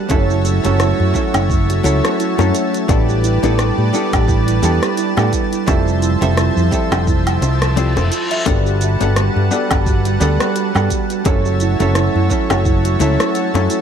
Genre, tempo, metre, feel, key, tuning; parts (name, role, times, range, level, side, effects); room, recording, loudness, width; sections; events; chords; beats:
sunset chillout; 86 BPM; 4/4; swing 56% on 16ths; A4 = 439 Hz
vintage hollow-body jazz guitar; accompaniment; 0.0-13.8 s; F3 to F#5; -20 LUFS; moving between left 8 dB and right 7 dB; auto-pan, ping-pong delay
lush unison pad; sustained chords; 0.0-13.8 s; F3 to A5; -23 LUFS; left 1 dB; chorus
kalimba; arpeggios; 0.0-13.8 s; E4 to E5; -22 LUFS; right 7 dB; ping-pong delay
mellow fretless electric bass; bass; 0.1-13.7 s; F1 to A2; -16 LUFS; equal
deep house drum kit; drums; 0.1-13.8 s; hi-hat, rim click, shaker, woodblock; -23 LUFS; equal
electronic kick drum; drums; 0.1-12.8 s; -18 LUFS; equal
bongos; percussion; 0.1-13.7 s; -27 LUFS; left 4 dB
reverse cymbal; sound effects; 7.5-8.5 s; -28 LUFS; left 3 dB
light reverb; dark, warm production; -13 LUFS; side -8 dB against mid
0.0-13.8 A section
reverse cymbal 7.5-8.5; kick drops out 7.8-8.5
0.1 F#m7; 2.9 A9sus4; 5.7 Fmaj7; 8.5 Gmaj9; 11.3 F#m7
| 0.10 0.80 1.49 2.19 | 2.89 3.59 4.28 4.98 | 5.68 6.38 7.08 7.77 | 8.47 9.17 9.87 10.56 | 11.26 11.96 12.66 13.35